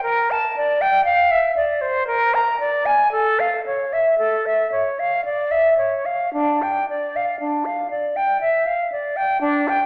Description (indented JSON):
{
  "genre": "classical, baroque-style fantasia for unaccompanied flute",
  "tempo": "58 BPM",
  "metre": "3/4",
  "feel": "uneven beats, rubato",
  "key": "D minor",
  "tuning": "A4 = 440 Hz",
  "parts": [
    { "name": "concert flute", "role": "solo", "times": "0.0-9.9 s", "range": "D4 to Bb5", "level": "-20 LUFS", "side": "equal", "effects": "none" }
  ],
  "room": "wet recital hall reverb, RT60 1.4 s",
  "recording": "none",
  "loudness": "-20 LUFS",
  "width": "mono",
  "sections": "0.0-9.9 A section",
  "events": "none",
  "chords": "none",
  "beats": "| 0.03 1.04 2.06 | 3.11 4.17 5.24 | 6.33 7.39 8.40 | 9.40"
}